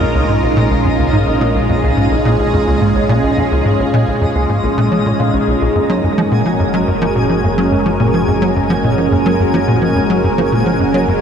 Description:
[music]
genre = ambient, sequencer-driven space music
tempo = 107 BPM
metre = 4/4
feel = straight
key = unclear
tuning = A4 = 440 Hz
[part]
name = lush unison pad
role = sustained chords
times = 0.0-11.2 s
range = Ab3 to Bb4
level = -16 LUFS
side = right 1 dB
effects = chorus, phaser
[part]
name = thumb-piano-like synth pluck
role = arpeggios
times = 0.0-11.0 s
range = Bb3 to F5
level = -26 LUFS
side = moving between left 6 dB and right 1 dB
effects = none
[part]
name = tight sequencer bass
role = riff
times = 0.0-11.1 s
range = Bb1 to Gb3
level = -16 LUFS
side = equal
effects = ensemble chorus, analog delay
[part]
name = analog drone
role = bass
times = 0.0-11.2 s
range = Gb1 to Bb1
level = -24 LUFS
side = equal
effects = chorus
[part]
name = twinkling granular texture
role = texture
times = 0.0-11.2 s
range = Eb4 to Ab5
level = -22 LUFS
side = right 1 dB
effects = built-in reverb
[sound]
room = wet concert hall reverb, RT60 2.1 s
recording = none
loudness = -12 LUFS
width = side -7 dB against mid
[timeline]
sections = 0.0-11.2 A section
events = none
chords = 0.0 Bbm7; 5.8 Gbadd9

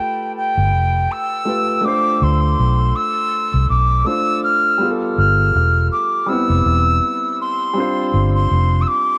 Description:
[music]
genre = lovers rock reggae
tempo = 81 BPM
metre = 4/4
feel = swing 56% on 16ths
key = unclear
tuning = A4 = 439 Hz
[part]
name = silver concert flute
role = melody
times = 0.0-9.2 s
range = G5 to F6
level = -20 LUFS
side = equal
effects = tape echo
[part]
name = warm grand piano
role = accompaniment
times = 0.0-9.2 s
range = G3 to C5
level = -25 LUFS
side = equal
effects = none
[part]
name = vintage muted fingered electric bass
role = bass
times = 0.6-8.8 s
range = E1 to D2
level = -18 LUFS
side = equal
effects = none
[sound]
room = light reverb, studio ambience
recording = none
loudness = -17 LUFS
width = mono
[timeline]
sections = 0.0-7.8 A section; 7.8-9.2 B section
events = none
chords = 0.0 G9; 1.8 Dm7; 4.8 G9; 6.3 Cmaj7; 7.8 G7sus4

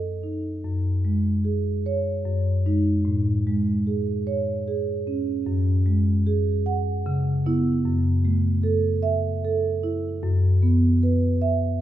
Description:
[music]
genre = classical, contemporary piece for solo marimba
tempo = 75 BPM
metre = 3/4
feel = rubato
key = F# dorian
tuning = A4 = 440 Hz
[part]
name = marimba with soft mallets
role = solo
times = 0.0-11.8 s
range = F#2 to F#5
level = -21 LUFS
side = equal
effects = none
[sound]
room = wet recital hall reverb, RT60 1.8 s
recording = heard from further back in the room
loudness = -21 LUFS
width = side -12 dB against mid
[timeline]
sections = 0.0-11.8 A section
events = none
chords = 0.0 F#m6; 0.6 F#sus2; 2.3 D#madd11/F#; 3.1 Amaj7; 5.5 F#sus2; 7.1 C#m7; 7.8 F#m7; 10.2 F#7sus4

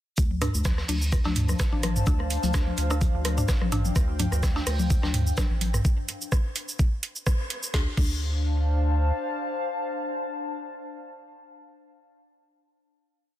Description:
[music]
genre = minimal techno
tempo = 127 BPM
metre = 4/4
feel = swing 54% on 16ths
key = D minor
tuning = A4 = 440 Hz
[part]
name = rubbery square bass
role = bass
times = 0.2-9.1 s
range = A1 to D2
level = -26 LUFS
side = equal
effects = sidechain pumping
[part]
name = electronic kick drum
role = drums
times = 0.2-8.1 s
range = none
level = -24 LUFS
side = equal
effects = overdrive
[part]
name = garage drum kit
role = drums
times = 0.2-8.1 s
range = crash cymbal, hi-hat, rim click, shaker, snare drum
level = -33 LUFS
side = right 2 dB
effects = overdrive
[part]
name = vintage brush drum kit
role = drums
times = 0.2-5.7 s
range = hi-hat, shaker, snare drum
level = -38 LUFS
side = equal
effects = sidechain pumping on hats, high-pass filter on hats, high-pass filter on snare, sidechain pumping on perc, high-pass filter on perc, high-pass filter on room
[part]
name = warbly tape-like pad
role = texture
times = 1.1-11.6 s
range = D4 to A5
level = -33 LUFS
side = left 2 dB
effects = chorus, built-in reverb, sidechain pumping
[part]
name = booming analog drum machine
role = percussion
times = 0.3-5.8 s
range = cowbell, rim click, toms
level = -29 LUFS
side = left 2 dB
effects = soft clipping on snare, tape echo
[part]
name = mallet-like synth pluck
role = riff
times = 0.4-8.1 s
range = D4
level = -37 LUFS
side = left 1 dB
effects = chorus, cassette tape, sidechain pumping, tape echo
[sound]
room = little or no reverb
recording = dense, heavily limited modern master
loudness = -23 LUFS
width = side -13 dB against mid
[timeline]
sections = 0.2-7.7 drop; 7.7-11.5 final chord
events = drop 0.2-7.7; band accent 7.3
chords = 0.2 Dm7

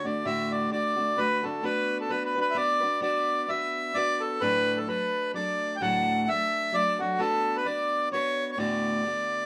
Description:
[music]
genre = celtic folk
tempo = 130 BPM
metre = 3/4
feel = swing 56% on 8ths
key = D major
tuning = A4 = 443 Hz
[part]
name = accordion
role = melody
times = 0.0-9.5 s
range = F#4 to G5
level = -28 LUFS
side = equal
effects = none
[part]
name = fingerpicked steel-string acoustic guitar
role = accompaniment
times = 0.0-9.5 s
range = D2 to B4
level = -34 LUFS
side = equal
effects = none
[sound]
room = light reverb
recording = none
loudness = -27 LUFS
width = mono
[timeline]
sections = 0.0-9.5 A section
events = none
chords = 0.0 D; 1.6 Bm; 4.4 D; 7.2 Bm; 8.6 D6

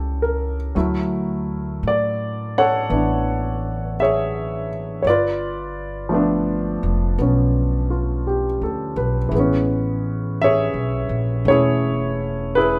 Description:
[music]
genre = jazz ballad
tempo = 56 BPM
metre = 4/4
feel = swing 66% on 8ths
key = A major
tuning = A4 = 439 Hz
[part]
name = warm concert grand piano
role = accompaniment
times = 0.0-12.8 s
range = E3 to F#5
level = -22 LUFS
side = equal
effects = none
[part]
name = upright bass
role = bass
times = 0.0-12.8 s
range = E1 to A2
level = -26 LUFS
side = equal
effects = none
[sound]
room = light reverb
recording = none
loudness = -21 LUFS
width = mono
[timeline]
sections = 0.0-12.8 A section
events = none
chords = 0.0 A7b9; 0.8 Dmaj9#11; 5.0 G9; 9.3 Amaj9

